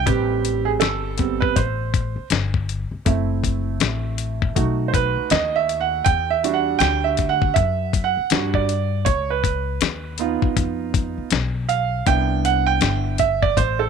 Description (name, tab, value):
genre	hip hop, jazz-hop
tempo	80 BPM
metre	4/4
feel	swing 61% on 16ths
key	E minor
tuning	A4 = 440 Hz
part	warm grand piano	accompaniment	0.0-13.9 s	G3 to G5	-21 LUFS	right 10 dB	none
part	upright bass	bass	0.0-13.9 s	F#1 to G2	-24 LUFS	left 2 dB	none
part	dusty soul sampler-style drum kit	drums	0.1-13.8 s	hi-hat, kick drum, snare drum	-21 LUFS	left 6 dB	none
room	light reverb, small room ambience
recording	1960s-style stereo with parts hard left and right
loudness	-18 LUFS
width	side -6 dB against mid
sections	0.0-13.9 A section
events	grand piano solo 0.0-13.9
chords	0.1 Am7; 3.1 F#m7b5; 4.6 B7; 6.1 Em9; 9.1 C#9; 12.1 Cmaj9